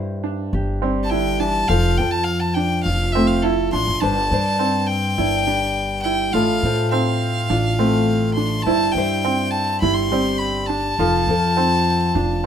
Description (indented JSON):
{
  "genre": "acoustic folk duo or small band",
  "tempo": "103 BPM",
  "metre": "4/4",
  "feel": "straight",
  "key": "unclear",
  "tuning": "A4 = 440 Hz",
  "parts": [
    { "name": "nylon-string guitar", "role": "accompaniment", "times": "0.0-12.5 s", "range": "G2 to C5", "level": "-23 LUFS", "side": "left 2 dB", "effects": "none" },
    { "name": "upright bass", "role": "bass", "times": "0.0-12.5 s", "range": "F1 to A2", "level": "-23 LUFS", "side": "equal", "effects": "none" },
    { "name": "clear upright piano", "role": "arpeggios", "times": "0.2-12.5 s", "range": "C4 to F4", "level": "-24 LUFS", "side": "right 5 dB", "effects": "none" },
    { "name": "clear fiddle", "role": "melody", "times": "1.0-12.5 s", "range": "A4 to C6", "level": "-22 LUFS", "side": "left 2 dB", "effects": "none" }
  ],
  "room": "light reverb",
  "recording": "minimal, uncompressed stereo recording",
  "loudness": "-17 LUFS",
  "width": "side -8 dB against mid",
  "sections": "0.0-4.0 A section; 4.0-12.5 B section",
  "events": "fiddle solo 0.0-4.0",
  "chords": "0.0 Cadd9/G; 1.7 F; 4.0 Gsus4; 6.3 F/A; 8.7 Cadd9/G; 11.0 F"
}